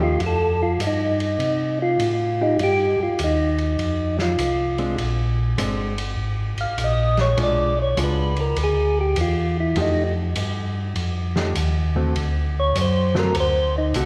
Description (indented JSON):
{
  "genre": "soul jazz organ trio",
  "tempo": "100 BPM",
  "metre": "4/4",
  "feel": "swing 66% on 8ths",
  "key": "F mixolydian",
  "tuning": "A4 = 440 Hz",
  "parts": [
    { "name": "percussive tonewheel organ", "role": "melody", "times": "0.0-14.1 s", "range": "Eb4 to F5", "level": "-24 LUFS", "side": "equal", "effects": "slow rotary speaker" },
    { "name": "hollow-body jazz guitar", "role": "accompaniment", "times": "0.0-14.1 s", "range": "D3 to G4", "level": "-30 LUFS", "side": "equal", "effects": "none" },
    { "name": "mellow tonewheel organ", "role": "bass", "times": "0.0-14.1 s", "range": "G1 to C3", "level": "-25 LUFS", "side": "equal", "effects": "slow rotary speaker" },
    { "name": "vintage drum kit", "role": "drums", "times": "0.2-14.1 s", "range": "hi-hat, ride cymbal, snare drum", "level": "-33 LUFS", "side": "equal", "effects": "none" }
  ],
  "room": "wet scoring stage reverb, RT60 1.6 s",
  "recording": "recorded in a church or concert hall",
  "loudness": "-22 LUFS",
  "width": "mono",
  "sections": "0.0-14.1 A section",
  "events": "tonewheel organ solo 0.0-14.1",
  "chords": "0.2 F9; 2.6 Ebadd9; 3.8 F5; 5.0 Bb9; 7.4 Bdim7; 9.8 F9; 12.2 D7",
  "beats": "| 0.21 0.81 1.40 2.00 | 2.60 3.19 3.79 4.39 | 4.99 5.58 6.18 6.78 | 7.38 7.97 8.57 9.17 | 9.77 10.36 10.96 11.56 | 12.15 12.75 13.35 13.95"
}